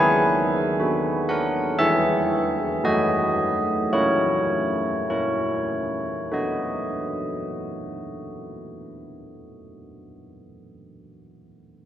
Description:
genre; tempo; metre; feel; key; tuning
classical, tune for church bells; 47-62 BPM; 3/4; straight; B major; A4 = 440 Hz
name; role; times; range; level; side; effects
carillon bells; solo; 0.0-10.1 s; D#3 to G#5; -21 LUFS; equal; none
room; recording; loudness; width
wet cathedral reverb, RT60 5.0 s; none; -21 LUFS; side -11 dB against mid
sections
0.0-6.3 A section; 6.3-10.2 B section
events
slowing down 0.0-6.3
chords
0.0 B/D#; 1.8 E; 2.8 F#7; 6.3 B

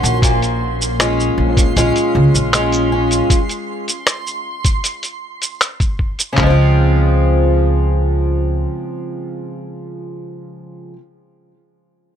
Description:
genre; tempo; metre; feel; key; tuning
folktronica; 78 BPM; 4/4; straight; Db major; A4 = 440 Hz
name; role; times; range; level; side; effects
fingerpicked twelve-string acoustic guitar; arpeggios; 0.0-11.0 s; Bb2 to Gb4; -18 LUFS; equal; tape echo
upright bass; bass; 0.0-8.6 s; Bb1 to Db2; -15 LUFS; equal; none
lo-fi sampler-style drum kit; drums; 0.0-6.3 s; cabasa, finger snaps, hi-hat; -18 LUFS; equal; none
backwards swelling texture; texture; 0.0-3.3 s; C6; -28 LUFS; right 5 dB; built-in reverb
lo-fi sampler-style drum kit; drums; 0.2-6.6 s; handclaps, kick drum; -15 LUFS; equal; none
room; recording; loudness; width
light reverb; none; -13 LUFS; side -9 dB against mid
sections
0.0-6.4 A section; 6.4-9.5 B section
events
none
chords
0.2 Bbm7; 3.3 N.C.; 6.4 Dbmaj7

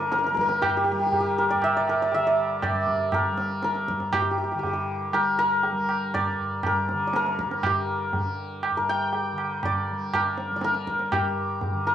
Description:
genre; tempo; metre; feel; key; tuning
indian classical, Hindustani; 120 BPM; 7/4; straight; unclear; A4 = 440 Hz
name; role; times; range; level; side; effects
santur; melody; 0.0-11.9 s; G4 to G5; -24 LUFS; left 1 dB; cassette tape
tanpura; drone; 0.0-11.9 s; G2 to G3; -34 LUFS; equal; cassette tape
tabla; percussion; 0.0-11.8 s; none; -28 LUFS; right 4 dB; none
room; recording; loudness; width
light reverb; home recording on cassette, small room ambience; -22 LUFS; side -10 dB against mid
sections
0.0-11.9 A section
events
none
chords
none

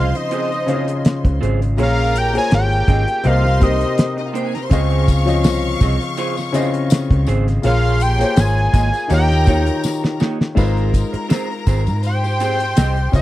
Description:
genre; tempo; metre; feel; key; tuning
lush 1970s-style soul; 82 BPM; 4/4; swing 54% on 16ths; Ab major; A4 = 439 Hz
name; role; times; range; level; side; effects
fat analog lead; melody; 0.0-13.2 s; Eb5 to Ab5; -21 LUFS; equal; none
rich studio string section; second line; 0.0-13.2 s; Db4 to Db6; -27 LUFS; left 2 dB; none
warm baby grand piano; accompaniment; 0.0-13.2 s; C3 to Eb5; -21 LUFS; left 3 dB; none
electric guitar through a small old amp; riff; 0.0-13.2 s; Bb3 to Eb5; -26 LUFS; right 6 dB; spring reverb
vintage muted fingered electric bass; bass; 0.0-13.2 s; Ab1 to Ab2; -17 LUFS; equal; none
damped 70s drum kit; drums; 0.1-13.2 s; crash cymbal, hi-hat, kick drum, snare drum; -15 LUFS; equal; none
tambourine; percussion; 4.7-13.2 s; none; -36 LUFS; left 14 dB; none
room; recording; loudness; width
little or no reverb; dry, close 1970s-style studio recording; -14 LUFS; side -15 dB against mid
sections
0.0-10.6 A section; 10.6-13.2 B section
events
drum fill 9.8-10.6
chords
0.0 Dbmaj7; 1.8 Bbm7; 3.2 Cm7; 4.7 Dbmaj7; 7.6 Bbm7; 9.1 Eb7; 10.6 Ab6

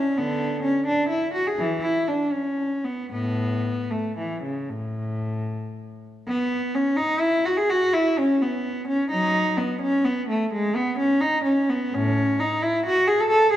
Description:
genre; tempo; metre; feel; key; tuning
classical, baroque-style suite movement for unaccompanied cello; 74-89 BPM (dotted quarters); 12/8; rubato; A major; A4 = 440 Hz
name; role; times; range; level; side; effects
rich cello; solo; 0.0-13.6 s; A2 to A4; -21 LUFS; equal; none
room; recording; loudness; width
moderate concert hall reverb, RT60 1.9 s; dark, warm production; -21 LUFS; side -12 dB against mid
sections
0.0-6.3 A section; 6.3-13.6 A section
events
none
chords
none

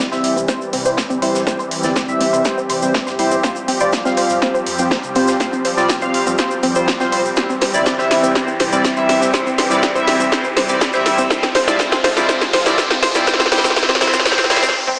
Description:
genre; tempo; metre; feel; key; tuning
progressive house; 122 BPM; 4/4; straight; C major; A4 = 440 Hz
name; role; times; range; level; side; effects
supersaw pad; sustained chords; 0.0-14.7 s; C3 to G4; -25 LUFS; equal; sidechain pumping, low-pass filter
analog pluck; arpeggios; 0.0-15.0 s; C4 to C5; -25 LUFS; equal; chorus, sidechain pumping, dub echo
chorused polysynth; stabs; 0.0-14.6 s; G3 to F5; -21 LUFS; equal; sidechain pumping, dub echo
dark detuned saw bass; bass; 0.0-14.7 s; F1 to F2; -38 LUFS; equal; sidechain pumping
modern studio drum kit; drums; 0.0-14.7 s; hi-hat, snare drum; -31 LUFS; equal; none
riser and swell; sound effects; 3.6-15.0 s; none; -30 LUFS; equal; none
tube shaker; percussion; 0.1-14.7 s; none; -33 LUFS; equal; none
deep house drum kit; drums; 0.2-15.0 s; hi-hat, snare drum, toms; -22 LUFS; equal; overdrive, sidechain pumping on hats, sidechain pumping on toms
electronic kick drum; drums; 0.5-14.4 s; none; -28 LUFS; equal; none
room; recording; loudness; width
wet digital room reverb, RT60 1.1 s; high-pass filter, small speaker sound; -16 LUFS; mono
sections
0.0-15.0 A section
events
build-up 0.0-15.0; drum fill 0.0-14.7; filter sweep on synth pluck 0.0-15.0; filter sweep on analog polysynth 0.0-15.0; filter sweep on supersaw synth 0.0-15.0; filter sweep 0.0-15.0; riser 3.6-15.0; swell 14.3-15.0; break 14.7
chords
0.0 C; 3.4 Fsus2; 7.4 C; 11.3 Fm

